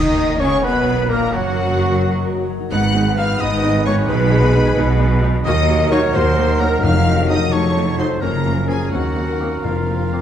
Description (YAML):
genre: classical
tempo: 87 BPM (dotted quarters)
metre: 6/8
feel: rubato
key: unclear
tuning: A4 = 440 Hz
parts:
  - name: rich symphonic violin section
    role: melody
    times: 0.0-10.2 s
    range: F5 to Gb6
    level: -29 LUFS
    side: left 4 dB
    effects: none
  - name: mellow hollow concert flute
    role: second line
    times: 0.0-10.2 s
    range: F4 to Gb5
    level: -25 LUFS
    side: left 1 dB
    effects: none
  - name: warm clarinet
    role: second line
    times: 0.0-10.2 s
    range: C4 to Eb5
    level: -27 LUFS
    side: left 2 dB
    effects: none
  - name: warm oboe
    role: second line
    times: 0.0-10.2 s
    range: F4 to Gb5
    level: -28 LUFS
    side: right 1 dB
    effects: none
  - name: warm symphonic violin section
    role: second line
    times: 0.0-10.2 s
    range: F4 to Gb5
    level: -29 LUFS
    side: left 3 dB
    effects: none
  - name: mellow bassoon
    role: accompaniment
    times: 0.0-10.2 s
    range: F3 to Eb4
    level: -27 LUFS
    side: right 2 dB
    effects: none
  - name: rich symphonic viola section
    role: accompaniment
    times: 0.0-10.2 s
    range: Gb3 to Gb4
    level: -27 LUFS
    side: equal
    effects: none
  - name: dark French horn section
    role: sustained chords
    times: 0.0-10.2 s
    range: Eb3 to Eb4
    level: -25 LUFS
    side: left 3 dB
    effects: none
  - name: concert harp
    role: arpeggios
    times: 0.0-10.2 s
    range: F2 to Cb6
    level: -25 LUFS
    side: left 7 dB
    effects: none
  - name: dark trumpet section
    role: stabs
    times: 0.0-10.2 s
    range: Gb4 to Eb5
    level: -26 LUFS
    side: right 2 dB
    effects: none
  - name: bright symphonic cello section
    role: bass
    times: 0.0-10.2 s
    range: Eb2 to Eb3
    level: -23 LUFS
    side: right 2 dB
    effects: none
  - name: warm symphonic double bass section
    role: bass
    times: 0.0-10.2 s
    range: F1 to Eb2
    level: -20 LUFS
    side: right 3 dB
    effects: none
  - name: timpani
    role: percussion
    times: 6.8-7.5, 9.6-10.2 s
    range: F2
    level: -22 LUFS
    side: left 2 dB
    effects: none
room: moderate scoring stage reverb, RT60 1.7 s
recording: dark, warm production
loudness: -14 LUFS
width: side -9 dB against mid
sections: 0.0-10.2 A section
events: none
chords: 0.0 Ebm; 1.3 Ebm/Gb; 2.7 Abm7; 4.1 Abm/Cb; 5.5 Ebm; 6.8 F7b9; 8.2 Gbmaj7; 8.9 Cm7b5/Eb; 9.6 Fsus4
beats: 0.63 | 1.32 2.02 | 2.71 3.40 | 4.09 4.77 | 5.46 6.14 | 6.83 7.53 | 8.22 8.92 | 9.64